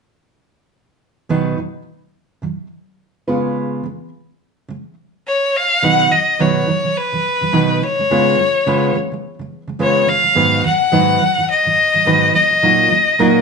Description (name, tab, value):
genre	pop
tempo	106 BPM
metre	4/4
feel	swing 60% on 16ths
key	unclear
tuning	A4 = 440 Hz
part	fingerpicked steel-string acoustic guitar	accompaniment	1.3-13.4 s	Ab2 to B4	-17 LUFS	right 3 dB	none
part	bright violin	melody	5.3-13.4 s	B4 to Gb5	-14 LUFS	left 2 dB	none
room	moderate large studio reverb, RT60 0.9 s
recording	band playing live in one room, nothing above 11.0 kHz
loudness	-13 LUFS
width	side -5 dB against mid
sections	1.3-5.8 A section; 5.8-13.4 B section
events	none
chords	1.3 B; 3.3 Db7; 5.8 B; 7.8 Db7; 10.4 Abm7; 12.3 Ebmadd9/Bb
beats	| 1.29 1.86 2.42 2.99 | 3.56 4.13 4.70 5.26 | 5.83 6.40 6.97 7.53 | 8.10 8.67 9.23 9.80 | 10.37 10.93 11.50 12.06 | 12.63 13.20